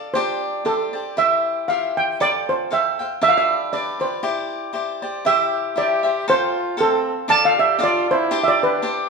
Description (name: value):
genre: mexican folk, mariachi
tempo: 118 BPM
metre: 2/4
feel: swing 55% on 8ths, rubato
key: C major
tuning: A4 = 442 Hz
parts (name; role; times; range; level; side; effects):
- steel pan; melody; 0.0-9.1 s; A4 to A5; -18 LUFS; right 2 dB; none
- cavaquinho; accompaniment; 0.0-9.1 s; D4 to G5; -24 LUFS; left 4 dB; none
- warm trumpet; second line; 5.3-9.1 s; C4 to D5; -25 LUFS; right 2 dB; none
room: wet large studio reverb, RT60 1.2 s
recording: band playing live in one room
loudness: -17 LUFS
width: side -4 dB against mid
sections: 0.0-5.3 A section; 5.3-9.1 A section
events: none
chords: 0.1 Gsus4; 1.2 C; 2.2 Fadd9; 3.2 G; 4.2 Cadd9; 5.3 C; 6.3 Fadd9; 7.3 Dm; 8.3 Gsus4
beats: | 0.15 0.66 | 1.17 1.69 | 2.20 2.71 | 3.22 3.72 | 4.23 4.74 | 5.26 5.77 | 6.28 6.78 | 7.28 7.79 | 8.30 8.82